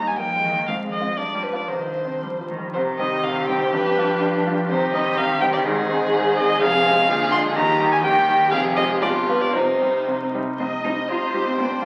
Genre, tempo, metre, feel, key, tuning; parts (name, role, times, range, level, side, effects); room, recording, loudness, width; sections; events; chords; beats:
quick classical-period movement for piano quintet; 112-127 BPM; 2/4; rubato; C minor; A4 = 439 Hz
rich violin; melody; 0.0-11.8 s; B4 to C6; -24 LUFS; equal
rich cello; second line; 0.0-11.7 s; B2 to G4; -31 LUFS; equal
bright grand piano; accompaniment; 0.0-11.8 s; F1 to G4; -28 LUFS; equal
rich violin; second line; 2.7-11.8 s; Eb4 to Eb5; -27 LUFS; equal
warm viola; accompaniment; 3.2-11.8 s; C4 to Eb5; -29 LUFS; equal
wet recital hall reverb, RT60 1.4 s; very old 78 rpm record, vinyl crackle; -21 LUFS; mono
0.0-2.7 A section; 2.7-10.6 B section; 10.6-11.8 B section
0.0 Eb; 0.7 Fm; 1.2 G7; 1.7 Cm; 3.7 G7; 4.7 Cm; 5.6 Ab; 6.6 Fm; 7.1 Bb7; 7.6 Eb; 8.5 Fm; 9.0 G7; 9.5 Cm
0.19 | 0.67 1.17 | 1.69 2.22 | 2.74 3.23 | 3.73 4.21 | 4.70 5.17 | 5.65 6.13 | 6.61 7.09 | 7.56 8.03 | 8.52 9.02 | 9.55 10.08 | 10.60 11.09 | 11.58